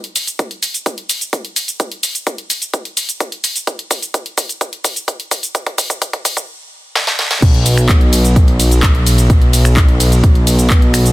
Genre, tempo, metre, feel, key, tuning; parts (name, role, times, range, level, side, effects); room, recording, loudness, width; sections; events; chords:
EDM, festival progressive house; 128 BPM; 4/4; straight; A4 = 435 Hz
house drum kit; drums; 0.0-11.1 s; cabasa, crash cymbal, finger snaps, handclaps, hi-hat, ride cymbal, snare drum; -18 LUFS; equal; high-pass filter on hats, small room ambience, high-pass filter on perc, high-pass filter on snare, high-pass filter on cymbals
electronic kick drum; drums; 0.4-10.8 s; -13 LUFS; equal; high-pass filter on kick, small room ambience
fat analog bass; bass; 7.4-11.1 s; B1; -12 LUFS; equal; sidechain pumping
little or no reverb; dense, heavily limited modern master, high-pass filter; -12 LUFS; side -18 dB against mid
0.0-7.4 A section; 7.4-11.1 B section
build-up 0.0-7.4; drum fill 0.0-6.5, 7.0-7.4; drop 7.4-11.1